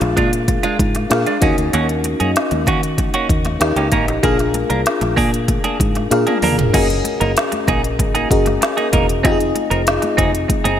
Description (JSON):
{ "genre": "polished 1980s jazz-funk pop", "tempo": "96 BPM", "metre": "4/4", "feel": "straight", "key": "unclear", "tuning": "A4 = 441 Hz", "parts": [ { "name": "FM electric piano", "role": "accompaniment", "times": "0.0-10.8 s", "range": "C4 to F5", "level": "-20 LUFS", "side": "left 2 dB", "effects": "lush chorus" }, { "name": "clean electric guitar", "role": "riff", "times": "0.0-10.8 s", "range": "Ab3 to Bb4", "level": "-21 LUFS", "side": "right 4 dB", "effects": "wide subtle chorus" }, { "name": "fingered electric bass", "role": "bass", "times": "0.0-10.8 s", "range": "Fb1 to Eb3", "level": "-21 LUFS", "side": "equal", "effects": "none" }, { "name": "organic electronic drum kit", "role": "drums", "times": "0.0-10.8 s", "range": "crash cymbal, hi-hat, kick drum, snare drum, toms", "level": "-19 LUFS", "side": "equal", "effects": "gated reverb" }, { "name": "congas", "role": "percussion", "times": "0.0-10.8 s", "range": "none", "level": "-32 LUFS", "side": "left 2 dB", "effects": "none" } ], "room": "moderate lush hall reverb, RT60 3.1 s", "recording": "bright 1980s-style digital production", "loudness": "-14 LUFS", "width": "side -10 dB against mid", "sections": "0.0-6.7 A section; 6.7-10.8 B section", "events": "drum fill 6.1-6.7", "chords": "0.0 Bb7; 1.4 Ebm7; 3.6 Eb7; 4.2 Bb7; 6.7 Gb69; 9.2 Fm7" }